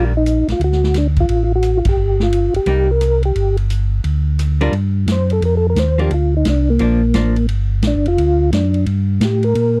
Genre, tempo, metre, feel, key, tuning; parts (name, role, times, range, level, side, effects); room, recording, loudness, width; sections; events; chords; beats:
soul jazz organ trio; 174 BPM; 4/4; swing 64% on 8ths; G minor; A4 = 440 Hz
percussive tonewheel organ; melody; 0.0-9.8 s; Bb3 to C5; -20 LUFS; equal; slow rotary speaker, chorus vibrato
archtop guitar, miked and amplified; accompaniment; 0.0-0.1, 2.7-7.4 s; Eb3 to Bb4; -24 LUFS; equal
mellow tonewheel organ; bass; 0.0-9.8 s; F1 to Bb2; -18 LUFS; equal; chorus vibrato, slow rotary speaker
swinging big-band drum kit; drums; 0.3-9.7 s; hi-hat, kick drum, ride cymbal, rim click, snare drum; -25 LUFS; equal
little or no reverb; dry, close 1970s-style studio recording; -16 LUFS; mono
0.0-4.7 A section; 4.7-9.8 B section
band accent 1.8; tonewheel organ solo 4.7-9.8
0.0 Ebmaj7; 0.6 D; 2.0 Fsus2/G; 2.7 Cm7; 3.4 N.C.; 4.0 Dmadd11; 4.7 Gm7
0.26 | 0.60 0.95 1.29 1.64 | 1.98 2.33 2.67 3.01 | 3.36 3.70 4.05 4.39 | 4.74 5.08 5.42 5.77 | 6.11 6.46 6.80 7.15 | 7.49 7.84 8.18 8.52 | 8.87 9.21 9.56